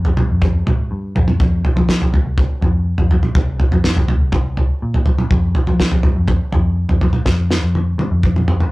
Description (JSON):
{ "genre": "psychedelic rock", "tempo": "123 BPM", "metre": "4/4", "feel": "straight", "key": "unclear", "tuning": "A4 = 440 Hz", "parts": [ { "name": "vintage muted picked electric bass", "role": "bass", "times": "0.0-8.6 s", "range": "C2 to F3", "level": "-18 LUFS", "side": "left 1 dB", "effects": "none" }, { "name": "cloth-damped thuddy drum kit", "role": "drums", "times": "0.0-8.7 s", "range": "kick drum, snare drum, toms", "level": "-15 LUFS", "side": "equal", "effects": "none" } ], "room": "moderate studio reverb, RT60 0.5 s", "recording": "rough rehearsal-room recording, warm saturation", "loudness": "-14 LUFS", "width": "side -21 dB against mid", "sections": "0.0-8.7 A section", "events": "drum fill 7.3-8.7", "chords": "none", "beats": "0.41 0.91 | 1.40 1.89 2.38 2.87 | 3.36 3.85 4.33 4.82 | 5.31 5.80 6.29 6.77 | 7.26 7.75 8.23" }